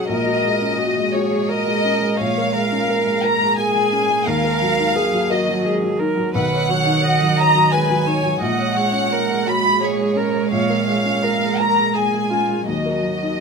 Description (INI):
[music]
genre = neoclassical piano and strings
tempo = 86 BPM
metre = 3/4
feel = rubato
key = F# major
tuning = A4 = 440 Hz
[part]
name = warm chamber violin section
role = melody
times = 0.0-13.4 s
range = C#5 to B5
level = -19 LUFS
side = left 2 dB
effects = none
[part]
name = warm cello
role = second line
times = 0.0-13.4 s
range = D#3 to G#3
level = -24 LUFS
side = right 7 dB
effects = none
[part]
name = felt-muted upright piano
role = accompaniment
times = 0.0-13.4 s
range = A#1 to C#5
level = -23 LUFS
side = left 4 dB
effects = none
[part]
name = warm viola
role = accompaniment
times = 0.0-13.3 s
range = E#4 to D#5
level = -23 LUFS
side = right 4 dB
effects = none
[sound]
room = light reverb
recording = minimal, uncompressed stereo recording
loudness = -16 LUFS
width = side -5 dB against mid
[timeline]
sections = 0.0-13.4 A section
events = none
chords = 0.1 F#add9/A#; 2.2 A#m7; 4.3 D#m; 6.3 Badd9; 8.4 F#add9/A#; 12.7 D#m